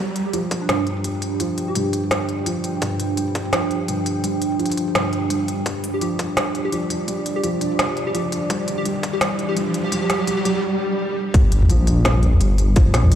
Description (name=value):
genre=half-time drum and bass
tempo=169 BPM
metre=4/4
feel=swing 58% on 16ths, half-time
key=G minor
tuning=A4 = 442 Hz
part: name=deep dark ambient pad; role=sustained chords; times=0.2-11.3 s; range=D4 to G5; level=-27 LUFS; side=right 3 dB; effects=chorus, built-in reverb, sidechain pumping
part: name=felt-muted upright piano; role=arpeggios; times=0.0-13.2 s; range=G2 to D4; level=-25 LUFS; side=left 1 dB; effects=low-pass filter, dub echo
part: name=organic electronic drum kit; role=drums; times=0.2-13.2 s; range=hi-hat, snare drum, toms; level=-24 LUFS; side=equal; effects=high-pass filter on hats, high-pass filter on toms, high-pass filter on snare, high-pass filter on room
part: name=plucky unison lead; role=melody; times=0.3-2.0, 5.9-10.6 s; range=D4 to G4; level=-28 LUFS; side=equal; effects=analog chorus, digital delay
part: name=electronic kick drum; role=drums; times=0.5-0.6, 2.8-3.4, 5.7-6.3, 8.5-9.1, 11.3-12.8 s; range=none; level=-17 LUFS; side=equal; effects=overdrive, high-pass filter on kick, high-pass filter on room
part: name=riser, swell and sub drop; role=sound effects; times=7.8-12.8 s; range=none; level=-27 LUFS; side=right 1 dB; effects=none
part: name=dark detuned saw bass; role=bass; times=11.3-13.2 s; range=G1 to Bb1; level=-16 LUFS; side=equal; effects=none
room=moderate huge ambient reverb, RT60 5.0 s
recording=played on a big sound system in a bare room, stone room reverb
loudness=-18 LUFS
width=side -10 dB against mid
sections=0.0-11.3 A section; 11.3-13.2 B section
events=build-up 0.0-11.3; filter sweep on digital synth lead 0.0-11.3; riser 7.8-10.6; break 10.6-11.3; swell 10.6-11.3; drop 11.3-13.2; impact 11.3-12.8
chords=0.0 G5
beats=0.34 0.69 1.05 | 1.40 1.76 2.11 2.47 | 2.82 3.18 3.53 3.89 | 4.24 4.60 4.95 5.31 | 5.66 6.02 6.37 6.73 | 7.08 7.44 7.79 8.15 | 8.50 8.86 9.21 9.57 | 9.92 10.28 10.63 10.99 | 11.34 11.70 12.05 12.41 | 12.76 13.12